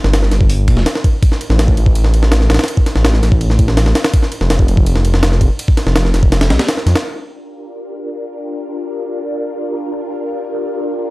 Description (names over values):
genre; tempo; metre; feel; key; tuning
drum and bass, jungle; 165 BPM; 4/4; straight; G minor; A4 = 440 Hz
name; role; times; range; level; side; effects
detuned saw bass; bass; 0.0-6.9 s; D1 to F2; -12 LUFS; equal; none
jungle sampler-style drum kit; drums; 0.0-7.0 s; hi-hat, kick drum, ride cymbal, snare drum; -13 LUFS; equal; none
soft string machine; sustained chords; 7.2-11.1 s; D4 to Bb4; -21 LUFS; left 1 dB; phaser, ensemble chorus, vintage 12-bit sampler grit
room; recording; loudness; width
little or no reverb; dry, gritty hardware recording; -12 LUFS; side -20 dB against mid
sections
0.0-7.0 A section; 7.0-11.1 B section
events
filter sweep on string machine 7.0-11.1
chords
0.0 G5; 1.2 N.C.; 4.1 F5; 7.0 Gm7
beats
0.14 0.50 0.86 | 1.23 1.59 1.96 2.32 | 2.68 3.05 3.41 3.77 | 4.14 4.50 4.86 5.23 | 5.59 5.96 6.32 6.68 | 7.05 7.41 7.77 8.14 | 8.50 8.86 9.23 9.59 | 9.96 10.32 10.68 11.05